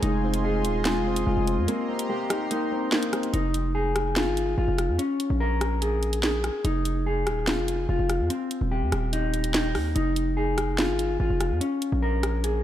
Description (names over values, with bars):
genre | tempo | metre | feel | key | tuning
hip hop, drill | 145 BPM | 4/4 | half-time | F minor | A4 = 440 Hz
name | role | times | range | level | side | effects
dark concert grand piano | accompaniment | 0.0-3.4 s | Ab3 to Eb4 | -29 LUFS | equal | none
warm analog pad | sustained chords | 0.0-3.3 s | F4 to C6 | -34 LUFS | equal | chorus
mellow electric guitar | arpeggios | 0.0-12.6 s | C4 to Bb4 | -27 LUFS | left 2 dB | digital delay
distorted 808-style bass | bass | 0.0-12.6 s | Eb1 to F2 | -26 LUFS | equal | distortion
drill drum kit | drums | 0.0-12.5 s | hi-hat, rim click, snare drum | -29 LUFS | equal | none
room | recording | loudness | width
light reverb | dark, warm production | -23 LUFS | side -11 dB against mid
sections
0.0-3.3 A section; 3.3-12.6 B section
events
break 1.7-3.3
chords
0.0 Fm7; 1.7 Eb6; 3.3 Fm7; 5.0 Bbm7; 6.6 Fm7; 8.3 Eb6; 10.0 Fm7; 11.6 Bbm7